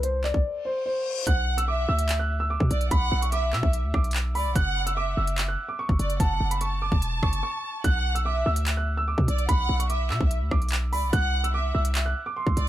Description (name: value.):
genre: hip hop, drill.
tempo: 146 BPM.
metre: 4/4.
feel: half-time.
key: B minor.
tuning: A4 = 440 Hz.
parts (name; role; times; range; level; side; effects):
dark concert grand piano; melody; 0.0-12.7 s; C5 to F#6; -29 LUFS; right 1 dB; none.
hard-hitting 808-style bass; bass; 0.0-12.7 s; E1 to B2; -26 LUFS; equal; none.
drill drum kit; drums; 0.0-12.7 s; handclaps, hi-hat, kick drum, rim click; -25 LUFS; equal; none.
reverse cymbal; sound effects; 0.7-1.3 s; none; -34 LUFS; left 7 dB; none.
warm studio violin section; second line; 1.3-12.7 s; D5 to A5; -31 LUFS; right 1 dB; tape echo.
room: light reverb.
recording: none.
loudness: -23 LUFS.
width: side -13 dB against mid.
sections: 0.0-1.3 A section; 1.3-12.7 B section.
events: break 0.4-1.3, 7.4-7.8; reverse cymbal 0.7-1.3.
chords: 0.0 D7(no3)/B; 1.3 Bm; 4.6 F#m; 7.8 Bm; 11.1 C.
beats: 0.04 0.45 0.86 | 1.27 1.68 2.09 2.50 | 2.91 3.32 3.73 4.14 | 4.56 4.97 5.38 5.79 | 6.20 6.61 7.02 7.43 | 7.84 8.25 8.66 9.08 | 9.49 9.90 10.31 10.72 | 11.13 11.54 11.95 12.36.